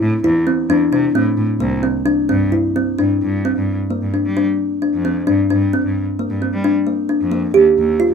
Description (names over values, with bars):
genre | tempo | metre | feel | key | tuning
contemporary instrumental, chamber music in an uneven meter | 132 BPM | 5/4 | straight | G minor | A4 = 440 Hz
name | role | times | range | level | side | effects
kalimba | arpeggios | 0.0-8.1 s | Bb3 to G4 | -15 LUFS | equal | none
rich cello | bass | 0.0-8.1 s | C2 to G3 | -22 LUFS | equal | none
room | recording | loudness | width
light reverb | minimal, uncompressed stereo recording | -14 LUFS | side -6 dB against mid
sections
0.0-3.0 A section; 3.0-8.1 B section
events
none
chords
0.0 C; 3.0 Gm; 7.5 Ebadd9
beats
0.24 | 0.70 1.15 1.60 2.06 2.53 | 3.00 3.46 3.92 4.37 4.83 | 5.28 5.74 6.19 6.64 7.10 | 7.55 8.00